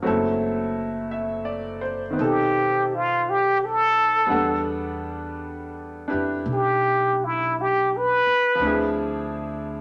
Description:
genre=jazz ballad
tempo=56 BPM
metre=4/4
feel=swing 68% on 8ths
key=unclear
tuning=A4 = 440 Hz
part: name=bright upright piano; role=accompaniment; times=0.0-9.8 s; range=D#3 to F#5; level=-29 LUFS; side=equal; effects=none
part: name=upright bass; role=bass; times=0.1-9.8 s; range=F#1 to F2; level=-34 LUFS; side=equal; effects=none
part: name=trumpet with plunger mute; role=melody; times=2.2-9.0 s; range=E4 to B4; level=-22 LUFS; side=equal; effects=none
room=moderate studio reverb, RT60 0.8 s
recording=none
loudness=-23 LUFS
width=mono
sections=0.0-9.8 A section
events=muted trumpet solo 0.0-9.8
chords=0.1 F#m7b5; 2.2 B7b9; 4.3 Em11; 8.6 Dm7b5

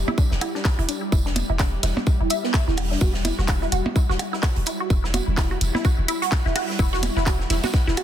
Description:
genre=minimal techno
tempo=127 BPM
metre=4/4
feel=swing 58% on 16ths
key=E minor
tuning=A4 = 441 Hz
part: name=punchy sub bass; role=bass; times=0.0-7.9 s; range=E1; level=-24 LUFS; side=equal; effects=sidechain pumping
part: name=swarming drone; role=texture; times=0.0-8.0 s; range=G3 to G4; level=-33 LUFS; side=equal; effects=built-in reverb, sidechain pumping
part: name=resonant blip pluck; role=riff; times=0.1-8.0 s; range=B3 to E5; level=-27 LUFS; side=right 1 dB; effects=phaser, sidechain pumping, ping-pong delay
part: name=percussion blips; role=percussion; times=0.1-8.0 s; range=none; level=-29 LUFS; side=right 4 dB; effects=tape echo
part: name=electronic kick drum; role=drums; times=0.2-7.8 s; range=none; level=-20 LUFS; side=equal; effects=none
part: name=oversized low-tuned drum kit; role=drums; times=0.2-8.0 s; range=hi-hat, snare drum, tambourine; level=-32 LUFS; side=right 2 dB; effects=sidechain pumping on hats, high-pass filter on hats, high-pass filter on snare, sidechain pumping on perc, high-pass filter on perc, high-pass filter on room
part: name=garage drum kit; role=drums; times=0.4-8.0 s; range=handclaps, hi-hat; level=-28 LUFS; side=equal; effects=soft clipping on snare
room=small room reverb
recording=dense, heavily limited modern master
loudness=-20 LUFS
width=side -10 dB against mid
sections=0.0-8.0 A section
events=none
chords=0.0 Em

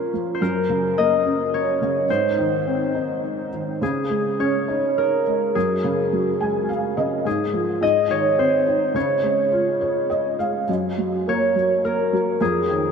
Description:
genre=children's music, lullaby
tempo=105 BPM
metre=3/4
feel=rubato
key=unclear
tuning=A4 = 440 Hz
part: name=concert harp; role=melody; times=0.0-12.9 s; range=Ab4 to Eb5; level=-21 LUFS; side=left 1 dB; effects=tape echo
part: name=felt-muted upright piano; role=accompaniment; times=0.0-12.9 s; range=F2 to Ab5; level=-23 LUFS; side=right 1 dB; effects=ensemble chorus
room=wet huge ambient reverb, RT60 6.4 s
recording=dreamy mix soaked in reverb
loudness=-19 LUFS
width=side -6 dB against mid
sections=0.0-10.7 A section; 10.7-12.9 B section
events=felt piano fill 6.1-7.3, 9.5-10.7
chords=0.4 Gb6; 2.1 Ab; 3.8 Dbsus2; 5.6 Gbsus2; 7.3 Fm/Ab; 7.8 Ab; 9.0 Db; 10.7 Gb; 12.4 Fm7

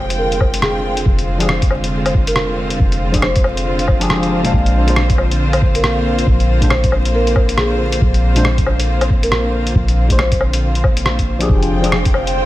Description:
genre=future garage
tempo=138 BPM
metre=4/4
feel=swing 60% on 16ths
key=unclear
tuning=A4 = 440 Hz
part: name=marimba with soft mallets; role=melody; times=0.0-10.5 s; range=Ab4 to C5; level=-23 LUFS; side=right 1 dB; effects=tape echo
part: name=warm studio string section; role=sustained chords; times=0.0-12.5 s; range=D3 to G5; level=-21 LUFS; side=equal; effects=vintage 12-bit sampler grit, sidechain pumping
part: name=soft 808-style bass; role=bass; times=0.0-12.5 s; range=F1 to Bb1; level=-18 LUFS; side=equal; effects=sidechain pumping
part: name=lo-fi sampler-style drum kit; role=drums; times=0.1-12.3 s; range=hi-hat, rim click, woodblock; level=-20 LUFS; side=left 1 dB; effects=studio reverb
part: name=electronic kick drum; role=drums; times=0.4-12.1 s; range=none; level=-16 LUFS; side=equal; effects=studio reverb
part: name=overdriven tine electric piano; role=accompaniment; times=1.4-12.0 s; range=Bb2 to F5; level=-21 LUFS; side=left 1 dB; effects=phaser, sidechain pumping, tape echo
part: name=backwards swelling texture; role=texture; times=11.8-12.5 s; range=C5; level=-24 LUFS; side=right 5 dB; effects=built-in reverb
room=light reverb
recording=vinyl crackle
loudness=-13 LUFS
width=side -16 dB against mid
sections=0.0-12.5 A section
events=none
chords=0.0 Fm69; 4.5 Bbadd9; 11.5 Fm69

